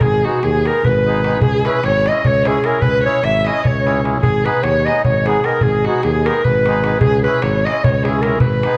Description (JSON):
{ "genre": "balkan folk, Balkan wedding band", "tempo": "300 BPM (eighths)", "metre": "7/8", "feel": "straight", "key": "unclear", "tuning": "A4 = 439 Hz", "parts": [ { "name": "dark clarinet", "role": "melody", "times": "0.0-8.8 s", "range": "F#4 to E5", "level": "-20 LUFS", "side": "equal", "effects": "none" }, { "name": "dark violin", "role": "second line", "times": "0.0-8.8 s", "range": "F#4 to E5", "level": "-26 LUFS", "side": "equal", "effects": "none" }, { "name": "mellow tuba", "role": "bass", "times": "0.0-8.7 s", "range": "G#1 to D#2", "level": "-23 LUFS", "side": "equal", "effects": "none" }, { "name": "darbuka", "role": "percussion", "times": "0.0-8.8 s", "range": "none", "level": "-22 LUFS", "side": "equal", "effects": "none" }, { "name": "accordion", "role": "accompaniment", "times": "0.2-8.8 s", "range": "G#3 to G#4", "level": "-26 LUFS", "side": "equal", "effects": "none" } ], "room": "moderate recital hall reverb, RT60 1.8 s", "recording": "dark, warm production", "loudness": "-16 LUFS", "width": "mono", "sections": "0.0-8.8 A section", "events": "none", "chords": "0.0 G#m; 1.4 C#m; 4.2 G#m; 7.0 C#m" }